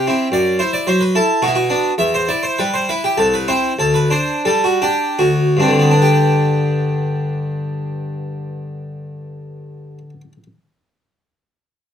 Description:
classical, baroque-style suite movement for harpsichord; 70-111 BPM; 3/4; rubato; G major; A4 = 440 Hz
harpsichord; solo; 0.0-10.4 s; C2 to E5; -15 LUFS; equal
light reverb; close, detailed microphones; -14 LUFS; side -9 dB against mid
0.0-6.0 A section; 6.0-10.8 B section
slowing down 1.2-6.0
0.3 F#m7b5; 1.4 Bm; 2.0 Em; 3.2 C; 3.8 Dsus4; 5.2 D7; 6.0 G

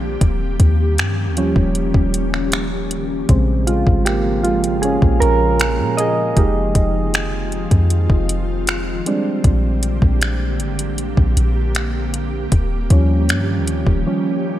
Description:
contemporary R&B; 78 BPM; 4/4; straight; A4 = 440 Hz
soft electric-piano-like synth keys; accompaniment; 0.0-14.6 s; Db3 to Eb5; -20 LUFS; right 2 dB; chorus, tremolo
ethereal airy pad; sustained chords; 0.0-14.6 s; Db3 to G4; -24 LUFS; left 1 dB; ensemble chorus, built-in reverb
soft 808-style bass; bass; 0.0-14.1 s; Eb1 to Bb2; -19 LUFS; equal
smooth R&B drum kit; drums; 0.2-14.0 s; finger snaps, hi-hat, kick drum; -18 LUFS; equal
little or no reverb; -15 LUFS; side -13 dB against mid
0.0-14.6 A section
synth keys solo 0.0-14.6
0.2 Eb7; 3.3 Bbm7; 6.4 Fm7; 9.1 Bb13; 12.5 Eb7

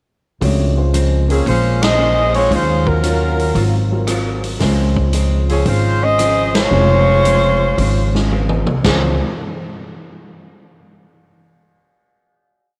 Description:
jazz, big band swing; 114 BPM; 4/4; swing 68% on 8ths; Db major; A4 = 440 Hz
vintage hollow-body jazz guitar; accompaniment; 0.4-9.1 s; Ab2 to C5; -27 LUFS; equal
warm grand piano; accompaniment; 0.4-9.2 s; Gb3 to Db5; -27 LUFS; equal
upright bass; bass; 0.4-9.2 s; F1 to Eb2; -19 LUFS; equal
swinging big-band drum kit; drums; 0.4-9.0 s; china cymbal, hi-hat, kick drum, ride cymbal, rim click, snare drum, toms; -25 LUFS; equal
clear saxophone section; melody; 1.3-9.2 s; F3 to Eb5; -18 LUFS; equal
light reverb; -15 LUFS; mono
0.4-8.8 A section; 8.8-11.0 final chord
band accent 1.7, 6.5; drum fill 8.3-8.8
0.4 Dbmaj7; 1.5 Bbm9; 2.5 Ebm9; 3.6 Ab13; 4.6 Dbmaj7

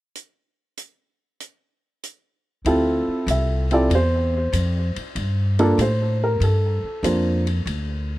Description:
jazz piano trio; 96 BPM; 4/4; swing 69% on 8ths; D minor; A4 = 440 Hz
open jazz drum kit; drums; 0.2-7.9 s; hi-hat, ride cymbal; -34 LUFS; left 3 dB
upright bass; bass; 2.6-8.2 s; C2 to A2; -21 LUFS; equal
dark upright piano; melody; 2.7-7.4 s; Bb3 to E5; -22 LUFS; right 1 dB; tape echo
little or no reverb; dry, close 1970s-style studio recording; -19 LUFS; side -17 dB against mid
0.2-2.7 A section; 2.7-8.2 B section
0.2 N.C.; 2.7 Dm9; 5.2 Gm9; 7.7 N.C.

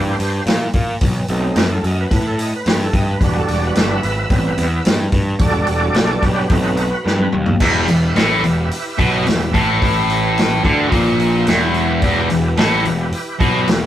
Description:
blues rock power trio and southern rock; 109 BPM; 4/4; straight; E minor; A4 = 440 Hz
overdriven tonewheel organ; sustained chords; 0.0-13.9 s; G3 to E5; -22 LUFS; right 2 dB; chorus vibrato, fast rotary speaker
fuzz picked electric bass; bass; 0.0-13.9 s; E1 to Bb2; -20 LUFS; equal; overdrive
vintage drum kit; drums; 0.2-13.8 s; crash cymbal, hi-hat, kick drum, snare drum, toms; -18 LUFS; equal
distorted electric guitar; riff; 7.6-13.9 s; E2 to D3; -16 LUFS; equal; overdrive
moderate stone room reverb, RT60 0.9 s; rough rehearsal-room recording; -14 LUFS; side -12 dB against mid
0.0-7.6 A section; 7.6-13.9 B section
tonewheel organ solo 0.0-7.6; drum fill 7.1-7.6
0.0 C7; 1.0 B7b9; 3.2 Em7; 4.3 Am7; 5.4 Em7; 6.5 B7b9; 7.6 Em

